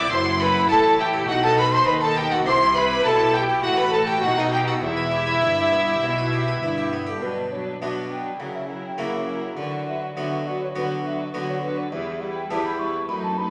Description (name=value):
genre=classical, baroque-style concerto movement with solo episodes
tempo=102 BPM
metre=4/4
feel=straight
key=E minor, B minor from 7.2 s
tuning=A4 = 441 Hz
part: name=clear chamber violin section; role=melody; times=0.0-13.5 s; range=A#4 to D6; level=-30 LUFS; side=equal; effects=none
part: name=mellow wooden flute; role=melody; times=0.0-13.5 s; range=A4 to D6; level=-28 LUFS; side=equal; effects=none
part: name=rich chamber violin section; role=second line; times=0.0-13.5 s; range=D4 to C5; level=-28 LUFS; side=equal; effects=none
part: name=harpsichord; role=accompaniment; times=0.0-13.5 s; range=E2 to F#5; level=-32 LUFS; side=equal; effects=none
part: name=warm chamber viola section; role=accompaniment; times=0.0-13.5 s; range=F#3 to F#4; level=-32 LUFS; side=equal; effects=none
part: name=rich chamber cello section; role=bass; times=0.0-13.5 s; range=C2 to D#3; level=-35 LUFS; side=equal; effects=none
part: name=warm chamber double bass section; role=bass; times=0.0-7.2 s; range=E1 to D#2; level=-34 LUFS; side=equal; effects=none
room=wet recital hall reverb, RT60 1.4 s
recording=none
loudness=-22 LUFS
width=mono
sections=0.0-7.2 A section; 7.2-13.5 B section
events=none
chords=0.1 Am13/F#; 1.3 B7; 2.5 C; 3.6 Gmaj9/A; 4.2 B7; 4.8 Em; 7.2 Bm; 8.4 F#7/C#; 9.6 Bm/D; 11.9 Em